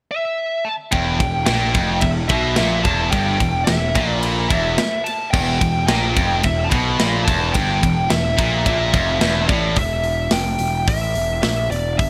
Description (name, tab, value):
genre	heavy metal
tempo	109 BPM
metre	4/4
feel	straight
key	E phrygian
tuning	A4 = 439 Hz
part	high-gain lead guitar	melody	0.1-12.1 s	D5 to B5	-25 LUFS	equal	distortion, delay
part	high-gain distorted guitar	riff	0.9-9.8 s	E2 to B2	-26 LUFS	equal	distortion
part	tight distorted guitar	riff	0.9-9.8 s	E2 to B2	-26 LUFS	equal	distortion
part	fuzz picked electric bass	bass	0.9-12.1 s	E1 to B1	-25 LUFS	equal	overdrive
part	tight metal drum kit	drums	0.9-12.1 s	crash cymbal, hi-hat, kick drum, ride cymbal, snare drum	-24 LUFS	equal	gated reverb
room	light reverb, studio reverb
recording	bright 1980s-style digital production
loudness	-19 LUFS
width	mono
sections	0.9-9.8 A section; 9.8-12.1 B section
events	none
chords	0.0 N.C.; 0.9 Em